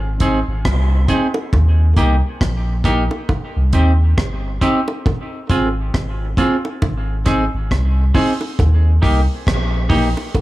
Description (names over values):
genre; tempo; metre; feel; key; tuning
dub reggae; 68 BPM; 4/4; swing 59% on 16ths; unclear; A4 = 444 Hz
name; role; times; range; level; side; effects
warm sub bass; bass; 0.0-10.1 s; G1 to Eb2; -16 LUFS; equal; none
semi-hollow electric guitar; accompaniment; 0.2-10.1 s; Bb3 to Ab4; -20 LUFS; right 1 dB; dub echo
deep reggae drum kit; drums; 0.2-10.4 s; hi-hat, kick drum, rim click; -19 LUFS; equal; none
bongos; percussion; 1.3-10.4 s; none; -28 LUFS; right 1 dB; dub echo
room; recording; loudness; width
light reverb, small room ambience; none; -14 LUFS; side -17 dB against mid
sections
0.0-10.4 A section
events
none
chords
0.0 Ab; 1.5 Eb; 3.3 Cm; 5.1 Fm; 6.8 Ab; 8.6 Eb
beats
0.65 1.53 2.41 | 3.29 4.17 5.05 5.93 | 6.82 7.70 8.58 9.46 | 10.34